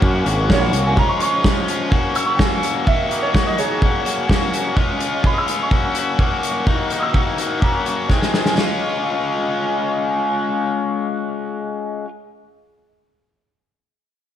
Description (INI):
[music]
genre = indie rock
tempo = 126 BPM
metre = 4/4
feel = straight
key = Db major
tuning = A4 = 445 Hz
[part]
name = overdriven electric guitar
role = riff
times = 0.0-12.1 s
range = Eb3 to Ab4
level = -20 LUFS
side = left 2 dB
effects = lush chorus
[part]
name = fuzz picked electric bass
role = bass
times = 0.0-0.9 s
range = Ab1 to Gb2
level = -19 LUFS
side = right 1 dB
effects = overdrive
[part]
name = loose indie drum kit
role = drums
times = 0.0-8.7 s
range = hi-hat, kick drum, snare drum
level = -19 LUFS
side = equal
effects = none
[part]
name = clear upright piano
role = melody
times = 0.5-8.5 s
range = Ab4 to Fb6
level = -24 LUFS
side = right 2 dB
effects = lush chorus, analog delay
[sound]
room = moderate lush hall reverb, RT60 1.6 s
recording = dreamy mix soaked in reverb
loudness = -16 LUFS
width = side -10 dB against mid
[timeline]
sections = 0.0-8.6 A section; 8.6-12.4 B section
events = upright piano solo 0.0-8.6; drum fill 8.1-8.6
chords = 0.0 Gb; 1.0 Db; 1.9 Gb; 2.9 Ebm; 3.8 Gb; 4.8 Db; 5.7 Gb; 6.7 Ebm; 7.6 Gb; 8.1 Abadd9; 8.6 Db